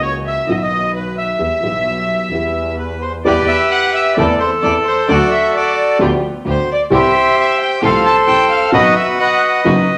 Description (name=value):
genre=tango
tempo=131 BPM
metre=4/4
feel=rubato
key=E minor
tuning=A4 = 439 Hz
part: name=warm studio violin section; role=second line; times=0.0-9.6 s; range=B4 to A5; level=-23 LUFS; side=equal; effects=none
part: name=dark upright piano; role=accompaniment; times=0.0-9.8 s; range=F#1 to A4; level=-22 LUFS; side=equal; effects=none
part: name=warm double bass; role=bass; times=0.0-9.8 s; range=F#1 to E2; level=-25 LUFS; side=equal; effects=none
part: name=bandoneon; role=melody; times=0.1-10.0 s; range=F#4 to A5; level=-17 LUFS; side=equal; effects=none
part: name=muted studio string section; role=stabs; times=3.3-9.8 s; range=B3 to A4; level=-26 LUFS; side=equal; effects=none
room=wet large studio reverb, RT60 1.1 s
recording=none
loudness=-14 LUFS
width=mono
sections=0.0-3.3 A section; 3.3-10.0 B section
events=none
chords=0.5 B; 1.4 Em; 4.2 Am/E; 5.1 D; 6.0 G7/D; 6.9 C; 7.8 F/C; 8.7 B